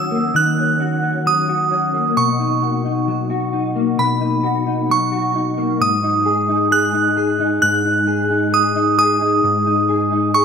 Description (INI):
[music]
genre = dream pop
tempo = 66 BPM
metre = 4/4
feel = straight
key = unclear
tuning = A4 = 440 Hz
[part]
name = glassy synth bell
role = melody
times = 0.0-10.4 s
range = B5 to F#6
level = -18 LUFS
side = right 3 dB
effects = chorus, digital delay
[part]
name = mellow electric guitar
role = arpeggios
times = 0.0-10.4 s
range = G#2 to G#4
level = -18 LUFS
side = left 2 dB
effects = ensemble chorus, digital delay
[sound]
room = wet plate reverb, RT60 3.5 s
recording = none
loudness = -15 LUFS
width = side -6 dB against mid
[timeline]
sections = 0.0-5.8 A section; 5.8-10.4 B section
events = none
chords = 0.0 D#m7; 2.2 Bmaj7; 5.8 G#7(no3)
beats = 0.34 1.25 | 2.16 3.07 3.98 4.89 | 5.80 6.71 7.62 8.53 | 9.44 10.34